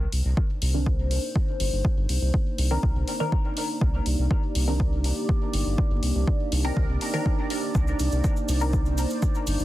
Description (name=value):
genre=dub techno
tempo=122 BPM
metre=4/4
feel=straight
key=C minor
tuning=A4 = 440 Hz
part: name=dark analog pad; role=sustained chords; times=0.6-9.6 s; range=Bb3 to C5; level=-31 LUFS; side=equal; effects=chorus, phaser, sidechain pumping
part: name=round analog bass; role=bass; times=0.0-9.6 s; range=G1 to C2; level=-24 LUFS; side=equal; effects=sidechain pumping
part: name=bubbling stepped-filter texture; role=texture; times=0.0-9.6 s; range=D5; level=-39 LUFS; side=right 5 dB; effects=chorus, built-in reverb, sidechain pumping
part: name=electronic hi-hat and cabasa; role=drums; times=0.1-9.6 s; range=none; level=-34 LUFS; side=left 1 dB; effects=none
part: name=electronic kick drum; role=drums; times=0.4-9.3 s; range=none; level=-24 LUFS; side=equal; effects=overdrive
part: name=filtered dub chord stab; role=stabs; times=0.7-8.8 s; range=Eb3 to Bb4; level=-32 LUFS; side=equal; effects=phaser, sidechain pumping, dub echo
room=little or no reverb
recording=dense, heavily limited modern master, vinyl crackle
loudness=-22 LUFS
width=side -15 dB against mid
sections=0.0-9.6 A section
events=none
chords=0.0 Cm9